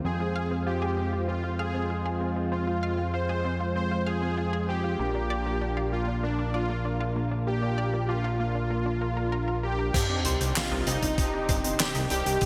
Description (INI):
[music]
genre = synthwave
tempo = 97 BPM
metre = 4/4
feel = straight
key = C minor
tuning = A4 = 440 Hz
[part]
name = warm analog pad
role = sustained chords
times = 0.0-12.5 s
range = C3 to G4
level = -37 LUFS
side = equal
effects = chorus, tremolo, sidechain pumping
[part]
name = analog pluck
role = arpeggios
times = 0.0-12.5 s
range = Bb3 to F5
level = -40 LUFS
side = equal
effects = chorus, delay
[part]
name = mellow synth brass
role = stabs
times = 0.0-12.5 s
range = Ab3 to C5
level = -39 LUFS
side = equal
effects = chorus, cassette tape, delay
[part]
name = fat analog bass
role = bass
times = 0.0-12.4 s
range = G1 to F2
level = -32 LUFS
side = equal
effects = sidechain pumping
[part]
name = soft supersaw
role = melody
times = 0.1-12.5 s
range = D4 to C5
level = -34 LUFS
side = equal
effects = cassette tape, delay
[part]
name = electronic kick drum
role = drums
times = 9.9-12.5 s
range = none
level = -30 LUFS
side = equal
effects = none
[part]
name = loose indie drum kit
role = drums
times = 9.9-12.5 s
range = crash cymbal, handclaps, hi-hat, snare drum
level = -32 LUFS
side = equal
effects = gated reverb
[part]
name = sub drop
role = sound effects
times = 9.9-12.4 s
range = none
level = -38 LUFS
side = equal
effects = none
[part]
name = soft synth bell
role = second line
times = 10.6-12.5 s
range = Eb5 to G5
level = -39 LUFS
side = equal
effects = chorus, delay
[sound]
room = moderate lush hall reverb, RT60 2.1 s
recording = bright 1980s-style digital production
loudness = -28 LUFS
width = mono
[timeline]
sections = 0.0-9.9 A section; 9.9-12.5 B section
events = impact 9.9-12.4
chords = 0.0 Fm; 5.0 Bb; 9.9 Cmadd9